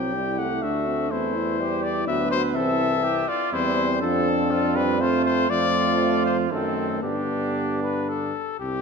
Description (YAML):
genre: classical, brass quintet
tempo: 112-126 BPM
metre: 3/4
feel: rubato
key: unclear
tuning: A4 = 439 Hz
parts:
  - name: warm trumpet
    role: melody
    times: 0.0-8.8 s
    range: G4 to G5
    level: -26 LUFS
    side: left 8 dB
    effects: none
  - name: clear trumpet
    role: second line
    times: 0.0-8.3 s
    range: C4 to B4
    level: -30 LUFS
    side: right 9 dB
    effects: none
  - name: clear trombone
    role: accompaniment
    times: 0.0-8.3 s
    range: D3 to A3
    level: -29 LUFS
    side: right 6 dB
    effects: none
  - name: mellow French horn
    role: accompaniment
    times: 0.0-8.3 s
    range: A3 to E4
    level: -28 LUFS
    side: left 2 dB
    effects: none
  - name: clear bass trombone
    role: bass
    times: 0.0-8.8 s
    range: C2 to G2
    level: -28 LUFS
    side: right 2 dB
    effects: none
room: moderate scoring stage reverb, RT60 1.9 s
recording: none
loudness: -21 LUFS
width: side -5 dB against mid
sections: 0.0-8.6 A section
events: none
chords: 0.0 C; 1.1 C/E; 2.6 C; 4.0 F; 5.5 Dm/F; 6.5 F#dim7; 7.0 G